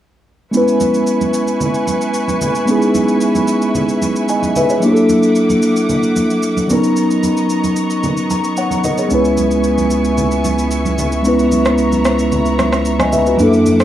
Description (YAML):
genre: amapiano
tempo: 112 BPM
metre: 4/4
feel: straight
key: C# dorian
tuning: A4 = 440 Hz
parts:
  - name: mellow tine electric piano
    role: accompaniment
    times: 0.5-13.8 s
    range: F#3 to A#5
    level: -13 LUFS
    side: equal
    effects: medium stereo tremolo, cassette tape
  - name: warm studio string section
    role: sustained chords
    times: 0.5-13.8 s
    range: A#3 to D6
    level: -22 LUFS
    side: equal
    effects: cassette tape
  - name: electronic shaker and rim click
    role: drums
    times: 0.5-13.8 s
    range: none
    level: -24 LUFS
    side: equal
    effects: overdrive, cassette tape
  - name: congas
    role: percussion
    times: 0.8-13.8 s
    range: none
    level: -24 LUFS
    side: right 5 dB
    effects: none
  - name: saturated sub bass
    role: bass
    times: 9.1-13.8 s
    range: C#2 to F#2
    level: -21 LUFS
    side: right 1 dB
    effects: none
room: light reverb, small room ambience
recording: home recording on cassette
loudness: -12 LUFS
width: side -11 dB against mid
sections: 0.5-13.8 A section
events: tine electric piano fill 8.0-9.1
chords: 0.5 C#m7; 4.8 F#7alt; 6.7 Bmaj9; 9.1 C#m7